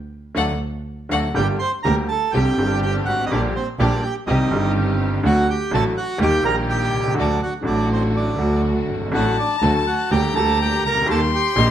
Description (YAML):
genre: tango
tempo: 123 BPM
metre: 4/4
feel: rubato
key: G harmonic minor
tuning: A4 = 440 Hz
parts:
  - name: clear upright piano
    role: accompaniment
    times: 0.3-11.7 s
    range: F#1 to G4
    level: -23 LUFS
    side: left 1 dB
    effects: none
  - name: dark violin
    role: second line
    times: 0.4-1.3, 9.1-11.7 s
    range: F#5 to C6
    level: -22 LUFS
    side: left 7 dB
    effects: none
  - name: muted studio string section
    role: stabs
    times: 0.4-11.7 s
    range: A3 to A4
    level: -28 LUFS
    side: equal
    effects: none
  - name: dark double bass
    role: bass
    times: 0.4-11.7 s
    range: G1 to Eb2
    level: -22 LUFS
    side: right 1 dB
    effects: none
  - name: bandoneon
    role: melody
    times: 1.4-11.7 s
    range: C4 to C6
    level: -23 LUFS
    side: right 4 dB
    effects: slapback echo
room: light reverb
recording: none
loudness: -17 LUFS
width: side -10 dB against mid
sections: 0.0-1.4 A section; 1.4-11.7 B section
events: band accent 0.0-1.4; violin solo 0.0-1.4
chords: 0.4 D; 1.4 Gm; 2.3 Csus2; 3.3 Gm/Bb; 4.3 Cm; 5.2 D; 6.2 Eb; 7.2 D; 10.1 Gm/D; 11.1 Eb